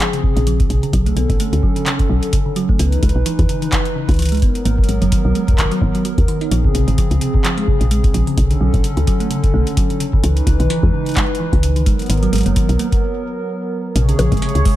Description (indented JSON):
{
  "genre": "IDM",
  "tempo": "129 BPM",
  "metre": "4/4",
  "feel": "swing 56% on 16ths",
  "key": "unclear",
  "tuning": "A4 = 440 Hz",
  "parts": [
    { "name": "hollow soft pad", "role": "sustained chords", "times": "0.0-14.8 s", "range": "C3 to Cb5", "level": "-22 LUFS", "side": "left 1 dB", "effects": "chorus, vintage 12-bit sampler grit" },
    { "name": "thumb-piano-like synth pluck", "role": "arpeggios", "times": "0.0-14.7 s", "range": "C3 to Eb4", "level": "-22 LUFS", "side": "right 2 dB", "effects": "chorus, tape echo" },
    { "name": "booming analog drum machine", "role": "drums", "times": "0.0-14.8 s", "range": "bongos, handclaps, hi-hat", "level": "-25 LUFS", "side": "equal", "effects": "none" },
    { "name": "electronic kick drum", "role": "drums", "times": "0.2-14.8 s", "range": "none", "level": "-17 LUFS", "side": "equal", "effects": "none" },
    { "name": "woody FM bass", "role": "bass", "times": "0.4-14.6 s", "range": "Gb1 to Fb2", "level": "-16 LUFS", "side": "equal", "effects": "none" },
    { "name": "bubbling stepped-filter texture", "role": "texture", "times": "14.0-14.8 s", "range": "Db5", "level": "-26 LUFS", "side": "right 5 dB", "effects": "chorus, built-in reverb, sidechain pumping" }
  ],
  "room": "light reverb, digital ambience",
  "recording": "dark, warm production",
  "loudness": "-14 LUFS",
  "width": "side -14 dB against mid",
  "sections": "0.0-14.0 A section",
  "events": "break 13.0-14.0",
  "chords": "0.0 Bbm9; 0.9 Bm9; 2.8 Dbm9; 4.4 Abm9; 6.5 Bbm9; 8.4 Bm9; 10.2 Dbm9; 11.9 Abm9; 14.0 Bbm9",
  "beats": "0.00 0.47 | 0.93 1.40 1.86 2.33 | 2.79 3.26 3.72 4.19 | 4.66 5.12 5.58 6.05 | 6.51 6.98 7.45 7.91 | 8.38 8.84 9.31 9.77 | 10.24 10.70 11.17 11.63 | 12.10 12.56 13.03 13.49 | 13.96 14.42"
}